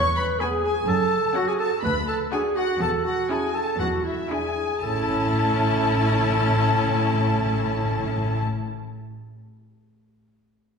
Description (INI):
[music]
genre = quick classical-period movement for symphony orchestra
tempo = 112-128 BPM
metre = 4/4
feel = straight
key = A major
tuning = A4 = 440 Hz
[part]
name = mellow clarinet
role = second line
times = 0.0-8.4 s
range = E4 to B4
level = -26 LUFS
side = right 2 dB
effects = none
[part]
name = rich studio violin section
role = second line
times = 0.0-8.4 s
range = E5 to C#6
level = -28 LUFS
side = left 3 dB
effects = none
[part]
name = rich studio cello section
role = bass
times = 0.0-8.4 s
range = D2 to A2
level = -31 LUFS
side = right 2 dB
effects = none
[part]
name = warm studio double bass section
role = bass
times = 0.0-8.4 s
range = E1 to D2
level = -29 LUFS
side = left 1 dB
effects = none
[part]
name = timpani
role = percussion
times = 0.0-0.6, 3.8-8.4 s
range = E2 to A2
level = -31 LUFS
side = left 2 dB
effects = none
[part]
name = rich chamber violin section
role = melody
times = 0.4-8.4 s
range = F#5 to B5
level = -30 LUFS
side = left 2 dB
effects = none
[part]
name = bright chamber viola section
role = accompaniment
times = 0.4-8.4 s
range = B3 to G#4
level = -29 LUFS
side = left 1 dB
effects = none
[sound]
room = wet scoring stage reverb, RT60 1.7 s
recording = heard from further back in the room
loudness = -21 LUFS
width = side -5 dB against mid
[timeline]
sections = 0.0-4.8 A section; 4.8-9.0 B section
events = slowing down 0.0-4.8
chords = 0.0 E; 0.9 F#m; 1.8 D6; 2.8 A/E; 3.8 E7; 4.8 A